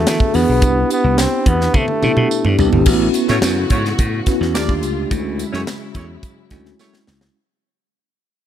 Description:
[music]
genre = polished 1980s jazz-funk pop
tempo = 107 BPM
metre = 4/4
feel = straight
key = unclear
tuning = A4 = 440 Hz
[part]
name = mellow flugelhorn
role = melody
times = 0.0-2.6 s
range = A3 to C4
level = -20 LUFS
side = right 1 dB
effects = digital delay
[part]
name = mellow tine electric piano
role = accompaniment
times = 0.0-7.4 s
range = D3 to G#4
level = -19 LUFS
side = left 1 dB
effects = medium stereo tremolo, wide subtle chorus
[part]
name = slap bass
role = bass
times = 0.0-7.3 s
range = G#1 to E3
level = -19 LUFS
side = equal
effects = none
[part]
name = tight funk drum kit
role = drums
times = 0.1-7.3 s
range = crash cymbal, hi-hat, kick drum, snare drum, toms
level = -18 LUFS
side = equal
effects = none
[part]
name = tambourine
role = percussion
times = 0.1-7.2 s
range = none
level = -33 LUFS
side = right 9 dB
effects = none
[part]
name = dark studio string section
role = sustained chords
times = 2.8-7.3 s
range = C#3 to F#4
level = -30 LUFS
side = left 1 dB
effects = none
[part]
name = warm horn section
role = second line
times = 3.3-7.0 s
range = A3 to D5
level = -26 LUFS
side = right 2 dB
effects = none
[sound]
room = small room ambience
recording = none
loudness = -14 LUFS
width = side -10 dB against mid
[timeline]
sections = 0.0-2.9 A section; 2.9-7.3 B section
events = drum fill 1.7-2.9, 6.8-7.3; fade-out 2.9-7.3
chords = 0.0 E7; 0.6 Cmaj7; 2.9 A6; 4.5 D#maj9#11; 5.1 Dmaj9#11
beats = 0.07 | 0.63 1.19 1.75 2.31 | 2.87 3.43 3.99 4.55 | 5.11 5.67 6.23 6.79

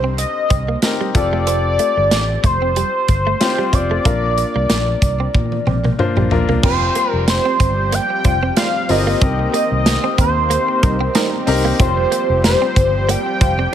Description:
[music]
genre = 1980s-style pop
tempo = 93 BPM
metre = 4/4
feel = swing 55% on 16ths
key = unclear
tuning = A4 = 438 Hz
[part]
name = clear grand piano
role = accompaniment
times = 0.0-13.7 s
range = Bb3 to C5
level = -23 LUFS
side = left 4 dB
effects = none
[part]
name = direct-recorded clean electric guitar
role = riff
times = 0.0-13.7 s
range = G3 to C4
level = -26 LUFS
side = right 6 dB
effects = analog chorus
[part]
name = fretless electric bass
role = bass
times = 0.0-13.7 s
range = F1 to Bb2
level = -20 LUFS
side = equal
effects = lush chorus
[part]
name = octave-doubled lead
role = melody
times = 0.2-13.7 s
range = C5 to G5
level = -19 LUFS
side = equal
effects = chorus, phaser, digital delay
[part]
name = modern studio drum kit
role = drums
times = 0.2-13.6 s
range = crash cymbal, hi-hat, kick drum, snare drum, toms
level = -18 LUFS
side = equal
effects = gated reverb
[part]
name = lush unison pad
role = sustained chords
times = 6.6-13.7 s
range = Eb3 to G4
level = -26 LUFS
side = equal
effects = chorus
[part]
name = funky polysynth comp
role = stabs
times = 8.2-13.5 s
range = G3 to C5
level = -24 LUFS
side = right 2 dB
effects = chorus, digital delay
[sound]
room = light reverb, small room ambience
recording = none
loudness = -14 LUFS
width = side -10 dB against mid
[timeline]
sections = 0.0-6.6 A section; 6.6-13.7 B section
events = drum fill 5.3-6.6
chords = 0.0 Cm7; 1.2 Fadd9; 4.1 Bb; 6.6 Fsus2; 9.2 Cm7; 11.8 Fsus2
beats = 0.18 0.83 | 1.47 2.12 2.76 3.41 | 4.05 4.70 5.34 5.99 | 6.63 7.28 7.92 8.57 | 9.21 9.86 10.51 11.15 | 11.80 12.44 13.09 13.73

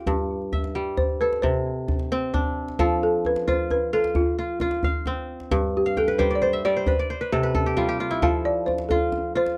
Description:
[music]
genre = west african traditional, West African string and xylophone music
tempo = 88 BPM (dotted quarters)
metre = 12/8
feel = straight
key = F lydian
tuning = A4 = 435 Hz
[part]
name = kora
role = arpeggios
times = 0.0-9.6 s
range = G2 to G5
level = -28 LUFS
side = equal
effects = none
[part]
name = djembe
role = percussion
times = 0.1-9.6 s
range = none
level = -30 LUFS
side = equal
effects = none
[part]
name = balafon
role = melody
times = 1.0-9.6 s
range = F4 to F5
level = -26 LUFS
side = equal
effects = tape echo
[sound]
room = light reverb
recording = dry, close 1970s-style studio recording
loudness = -24 LUFS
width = mono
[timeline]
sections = 0.0-2.8 A section; 2.8-9.6 B section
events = balafon solo 2.8-9.6; kora fill 5.9-8.2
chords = 0.1 Gsus2; 1.4 Csus2; 2.8 F; 5.5 N.C.; 6.9 C5; 8.2 F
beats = | 0.08 0.76 1.44 2.12 | 2.80 3.48 4.16 4.84 | 5.52 6.20 6.87 7.55 | 8.23 8.91

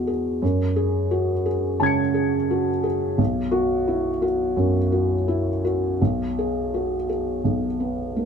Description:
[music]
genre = neoclassical minimalist piano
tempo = 82-87 BPM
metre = 4/4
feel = rubato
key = unclear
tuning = A4 = 440 Hz
[part]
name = felt-muted upright piano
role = solo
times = 0.0-8.3 s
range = B1 to C#7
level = -20 LUFS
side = equal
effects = none
[sound]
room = light reverb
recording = band playing live in one room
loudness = -20 LUFS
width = side -6 dB against mid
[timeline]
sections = 0.0-8.3 A section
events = none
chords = 0.4 F#madd9; 3.2 B5; 6.0 G#m/B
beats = | 0.42 1.11 1.80 2.49 | 3.19 3.88 4.57 5.27 | 5.99 6.72 7.45 8.17

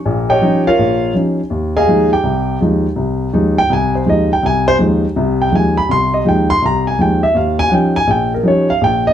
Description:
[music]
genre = jazz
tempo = 164 BPM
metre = 4/4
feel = swing 64% on 8ths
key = unclear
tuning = A4 = 438 Hz
[part]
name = warm grand piano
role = solo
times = 0.1-9.1 s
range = Bb1 to C6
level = -12 LUFS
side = equal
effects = none
[sound]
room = wet small room reverb, RT60 0.5 s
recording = heard from further back in the room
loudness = -12 LUFS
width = side -10 dB against mid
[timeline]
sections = 0.0-9.1 A section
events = none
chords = 0.0 Eb9; 1.5 Fm7; 7.3 Eb9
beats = | 0.04 0.41 0.78 1.14 | 1.50 1.87 2.23 2.60 | 2.96 3.33 3.69 4.06 | 4.42 4.79 5.15 5.52 | 5.88 6.25 6.61 6.98 | 7.34 7.71 8.07 8.44 | 8.80

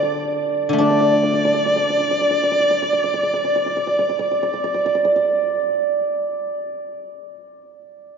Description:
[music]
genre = chinese traditional, Chinese chamber ensemble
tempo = 50 BPM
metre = 2/4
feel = rubato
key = unclear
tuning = A4 = 440 Hz
[part]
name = clear erhu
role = melody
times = 0.0-4.9 s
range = D5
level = -23 LUFS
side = left 1 dB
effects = none
[part]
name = hammered dulcimer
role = second line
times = 0.0-7.6 s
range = A4 to D5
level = -20 LUFS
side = right 3 dB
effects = none
[part]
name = guzheng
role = accompaniment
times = 0.0-7.3 s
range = D3 to D4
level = -23 LUFS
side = left 2 dB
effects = none
[sound]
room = wet cathedral reverb, RT60 5.6 s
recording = in a vast, echoing space, nothing above 7.5 kHz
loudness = -17 LUFS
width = side -6 dB against mid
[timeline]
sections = 0.8-5.6 A section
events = none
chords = none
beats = | 0.80 2.00 | 3.20 4.39

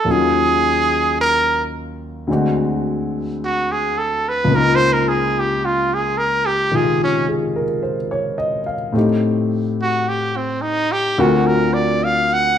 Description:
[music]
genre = jazz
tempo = 54 BPM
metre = 4/4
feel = swing 67% on 8ths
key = unclear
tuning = A4 = 440 Hz
[part]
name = clear trumpet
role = melody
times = 0.0-12.6 s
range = C4 to F#5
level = -17 LUFS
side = right 2 dB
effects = none
[part]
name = warm grand piano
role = accompaniment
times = 0.0-12.6 s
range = Db2 to F5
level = -19 LUFS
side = left 2 dB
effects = none
[sound]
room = moderate large studio reverb, RT60 1.1 s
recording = band playing live in one room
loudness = -16 LUFS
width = side -9 dB against mid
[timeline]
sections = 0.0-12.6 A section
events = trumpet solo 0.0-12.6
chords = 0.1 Ebm7; 2.3 D7#11; 4.5 Db69; 8.9 Am7b5; 11.2 D7alt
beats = | 0.07 1.17 2.28 3.39 | 4.50 5.61 6.72 7.83 | 8.94 10.05 11.17 12.29

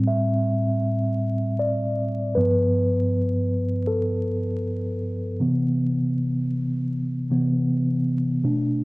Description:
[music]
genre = hip hop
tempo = 79 BPM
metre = 4/4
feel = swing 59% on 16ths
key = unclear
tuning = A4 = 441 Hz
[part]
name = mellow tine electric piano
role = solo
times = 0.0-8.8 s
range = G2 to E5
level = -21 LUFS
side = equal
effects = medium stereo tremolo, cassette tape, low-pass filter
[sound]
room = wet studio reverb, RT60 0.6 s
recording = worn, warbling old tape, cassette tape, vinyl crackle, warbly pitch drift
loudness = -21 LUFS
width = side -23 dB against mid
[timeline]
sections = 0.0-8.8 A section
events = tine electric piano solo 0.0-8.8; filter sweep on tine electric piano 0.0-8.8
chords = 0.0 Am7; 2.4 G9; 5.4 Cmaj7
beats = 0.08 0.84 1.60 | 2.36 3.12 3.88 4.64 | 5.40 6.16 6.92 7.68 | 8.44

